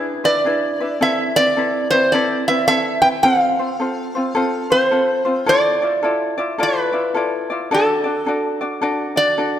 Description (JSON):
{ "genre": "Hawaiian", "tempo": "107 BPM", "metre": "4/4", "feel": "swing 63% on 8ths", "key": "unclear", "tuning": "A4 = 442 Hz", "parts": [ { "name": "ukulele", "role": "accompaniment", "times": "0.0-9.6 s", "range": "C4 to D5", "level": "-20 LUFS", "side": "left 2 dB", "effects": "none" }, { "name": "metal-body resonator slide guitar", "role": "melody", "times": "0.2-9.6 s", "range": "A4 to G5", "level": "-17 LUFS", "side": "right 1 dB", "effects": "none" } ], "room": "wet concert hall reverb, RT60 1.9 s", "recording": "none", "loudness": "-16 LUFS", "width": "side -10 dB against mid", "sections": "0.0-9.6 A section", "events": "none", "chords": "0.0 E7; 1.0 Amadd9; 3.2 F; 5.5 Dmadd9; 7.7 D" }